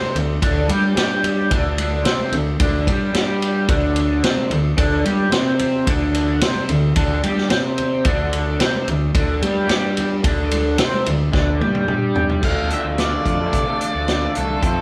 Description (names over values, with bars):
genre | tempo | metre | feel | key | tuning
psychedelic rock | 110 BPM | 4/4 | straight | unclear | A4 = 441 Hz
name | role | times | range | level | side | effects
raw garage guitar | riff | 0.0-14.8 s | D3 to C5 | -23 LUFS | equal | overdrive, rotary speaker
fuzz fingered electric bass | bass | 0.0-14.8 s | C2 to C3 | -25 LUFS | equal | overdrive
congas | percussion | 0.0-12.3 s | none | -34 LUFS | equal | none
vintage drum kit | drums | 0.2-14.8 s | crash cymbal, hi-hat, kick drum, ride cymbal, snare drum, toms | -24 LUFS | equal | none
octave-fuzz lead guitar | melody | 12.4-14.8 s | A4 to F5 | -27 LUFS | equal | distortion
room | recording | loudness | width
moderate stone room reverb, RT60 1.1 s | band playing live in one room | -19 LUFS | mono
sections
0.0-12.4 A section; 12.4-14.8 B section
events
drum fill 11.3-12.4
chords
0.0 D7sus4; 12.4 Dm